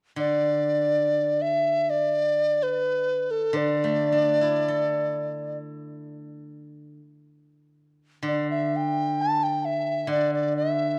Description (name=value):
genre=chinese traditional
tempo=free time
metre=none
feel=none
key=D zhi mode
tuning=A4 = 445 Hz
part: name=reedy large dizi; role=melody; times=0.2-11.0 s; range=A4 to A5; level=-25 LUFS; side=equal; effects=none
part: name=steel-string zither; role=accompaniment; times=0.2-11.0 s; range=D3 to A4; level=-32 LUFS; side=equal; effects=none
room=moderate concert hall reverb, RT60 1.9 s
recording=dark, warm production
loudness=-24 LUFS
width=mono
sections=0.0-8.2 A section; 8.2-11.0 B section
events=none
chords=none